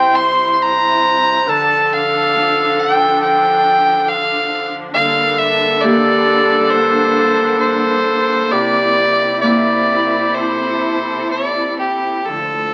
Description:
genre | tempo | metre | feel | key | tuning
celtic folk, Celtic slow air | 60-70 BPM | 4/4 | rubato | unclear | A4 = 440 Hz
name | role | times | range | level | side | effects
clear fiddle | melody | 0.0-12.7 s | G4 to C6 | -18 LUFS | equal | none
bright baroque flute | second line | 0.0-11.8 s | G4 to C5 | -20 LUFS | equal | none
Celtic harp | accompaniment | 0.0-12.7 s | G2 to G4 | -25 LUFS | equal | none
clear symphonic string section | sustained chords | 0.0-12.7 s | D2 to A4 | -24 LUFS | equal | none
room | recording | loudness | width
wet studio reverb, RT60 0.7 s | very old 78 rpm record, vinyl crackle | -15 LUFS | mono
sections
0.0-12.3 A section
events
none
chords
0.0 C; 1.5 Dm; 5.0 Gm/D; 8.5 C7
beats
0.60 | 1.48 2.36 3.22 4.09 | 4.95 5.83 6.72 7.62 | 8.51 9.42 10.35 11.32 | 12.27

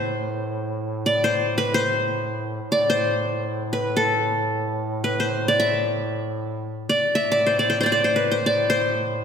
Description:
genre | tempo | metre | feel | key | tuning
Arabic maqam ensemble | free time | none | none | A minor | A4 = 438 Hz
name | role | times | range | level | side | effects
qanun | melody | 0.0-9.2 s | A4 to E5 | -21 LUFS | left 1 dB | none
warm duduk | drone | 0.0-9.2 s | A2 | -28 LUFS | equal | none
room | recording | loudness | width
wet concert hall reverb, RT60 1.9 s | recorded in a church or concert hall | -20 LUFS | side -7 dB against mid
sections
0.0-9.2 A section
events
none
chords
none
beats
free time

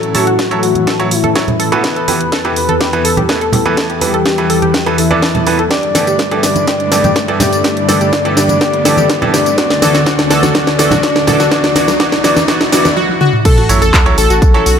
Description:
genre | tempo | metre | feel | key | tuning
progressive house | 124 BPM | 4/4 | straight | A mixolydian | A4 = 441 Hz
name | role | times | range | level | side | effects
soft octave-layered synth lead | melody | 0.0-14.8 s | E4 to D5 | -16 LUFS | left 2 dB | chorus, vintage 12-bit sampler grit, tape echo
lush unison pad | sustained chords | 0.0-14.8 s | D2 to B4 | -19 LUFS | left 2 dB | chorus, sidechain pumping
bright grand piano | stabs | 0.0-14.6 s | E3 to D5 | -18 LUFS | right 3 dB | sidechain pumping
house drum kit | drums | 0.0-14.8 s | crash cymbal, handclaps, hi-hat, snare drum, tambourine, toms | -16 LUFS | equal | overdrive
riser and sub drop | sound effects | 1.9-14.8 s | none | -23 LUFS | right 1 dB | none
analog pluck | arpeggios | 0.1-14.7 s | F#4 to A5 | -18 LUFS | equal | chorus, sidechain pumping, tape echo
congas and bongos | percussion | 0.1-12.9 s | none | -20 LUFS | right 2 dB | sidechain pumping on perc
electronic kick drum | drums | 0.4-14.5 s | none | -15 LUFS | equal | overdrive, high-pass filter on kick, high-pass filter on room
saturated sub bass | bass | 13.6-14.8 s | A1 to B1 | -15 LUFS | equal | sidechain pumping
room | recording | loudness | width
moderate lush hall reverb, RT60 1.8 s, digital ambience | none | -10 LUFS | side -7 dB against mid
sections
0.0-13.5 A section; 13.5-14.8 B section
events
build-up 0.0-13.5; drum fill 0.0-13.0, 13.0-13.5; filter sweep on synth pluck 0.0-13.5; drop 13.5-14.8; impact 13.5-14.8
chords
0.0 A6; 1.8 Esus4; 5.7 G6; 9.6 D; 13.5 A6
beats
0.39 0.87 1.35 | 1.84 2.32 2.81 3.29 | 3.77 4.26 4.74 5.23 | 5.71 6.19 6.68 7.16 | 7.64 8.13 8.61 9.10 | 9.58 10.06 10.55 11.03 | 11.52 12.00 12.48 12.97 | 13.45 13.94 14.42

